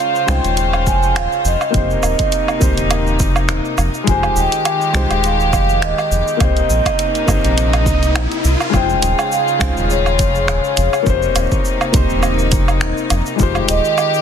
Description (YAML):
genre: sunset chillout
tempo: 103 BPM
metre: 4/4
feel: swing 55% on 16ths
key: unclear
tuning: A4 = 440 Hz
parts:
  - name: vibraphone with soft mallets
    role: melody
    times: 0.0-14.2 s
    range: C5 to Ab5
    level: -19 LUFS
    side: moving between left 8 dB and right 9 dB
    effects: auto-pan, tape echo, shimmer reverb
  - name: dark baby grand piano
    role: accompaniment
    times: 0.0-14.2 s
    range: Ab3 to C5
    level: -23 LUFS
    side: moving between left 10 dB and right 3 dB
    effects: auto-pan, low-pass filter, tape echo, shimmer reverb
  - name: warm studio string section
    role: sustained chords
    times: 0.0-14.2 s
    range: C3 to C5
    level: -22 LUFS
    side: left 3 dB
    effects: shimmer reverb
  - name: smooth R&B drum kit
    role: drums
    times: 0.2-14.2 s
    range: finger snaps, hi-hat, shaker, woodblock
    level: -22 LUFS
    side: right 3 dB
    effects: soft clipping on snare
  - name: round analog bass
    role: bass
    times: 0.3-13.8 s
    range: Eb1 to C2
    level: -18 LUFS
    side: equal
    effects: tube saturation
  - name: electronic kick drum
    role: drums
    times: 0.9-13.5 s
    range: none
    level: -20 LUFS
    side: equal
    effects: overdrive
  - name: riser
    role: sound effects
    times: 6.2-8.7 s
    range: none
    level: -26 LUFS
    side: left 2 dB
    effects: none
room: light reverb, small room reverb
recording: dense, heavily limited modern master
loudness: -13 LUFS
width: side -8 dB against mid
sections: 0.0-8.7 A section; 8.7-14.2 B section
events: riser 6.2-8.7; break 8.2-8.7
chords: 0.0 Dbmaj7; 1.7 Cm7; 4.1 Fm9; 6.4 Cm7; 8.7 Dbmaj7; 11.1 Cm7; 13.4 Fm9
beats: 0.00 0.58 1.16 | 1.74 2.33 2.91 3.49 | 4.07 4.66 5.24 5.82 | 6.40 6.99 7.57 8.15 | 8.73 9.32 9.90 10.48 | 11.06 11.65 12.23 12.81 | 13.39 13.98